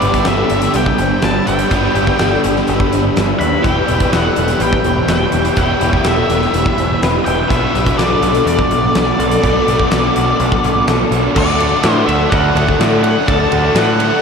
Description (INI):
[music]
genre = rock, shoegaze and dream pop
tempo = 124 BPM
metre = 4/4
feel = straight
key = E minor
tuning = A4 = 441 Hz
[part]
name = octave-fuzz lead guitar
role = melody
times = 0.0-14.2 s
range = D5 to B5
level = -20 LUFS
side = equal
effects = distortion, ping-pong delay
[part]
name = granular cloud pad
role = sustained chords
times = 0.0-14.2 s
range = G4 to F#6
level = -22 LUFS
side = equal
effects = built-in reverb
[part]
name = picked twelve-string acoustic guitar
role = arpeggios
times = 0.0-14.2 s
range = F#4 to C5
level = -22 LUFS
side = left 5 dB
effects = ensemble chorus, ping-pong delay
[part]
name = biting overdriven guitar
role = riff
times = 0.0-14.2 s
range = B2 to G4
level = -19 LUFS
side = left 6 dB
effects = analog chorus
[part]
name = overdriven electric guitar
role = riff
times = 0.0-14.2 s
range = E2 to G4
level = -20 LUFS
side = right 8 dB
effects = reverse reverb
[part]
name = growling picked electric bass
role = bass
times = 0.0-14.1 s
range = E1 to A2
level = -19 LUFS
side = equal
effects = overdrive
[part]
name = huge arena drum kit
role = drums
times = 0.0-14.1 s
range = crash cymbal, hi-hat, kick drum, ride cymbal, snare drum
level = -19 LUFS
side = equal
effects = none
[sound]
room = wet lush hall reverb, RT60 1.8 s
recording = dreamy mix soaked in reverb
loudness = -12 LUFS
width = side -6 dB against mid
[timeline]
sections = 0.0-11.4 A section; 11.4-14.2 B section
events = none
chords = 0.0 G6; 3.6 Em; 7.5 Bm7; 11.4 D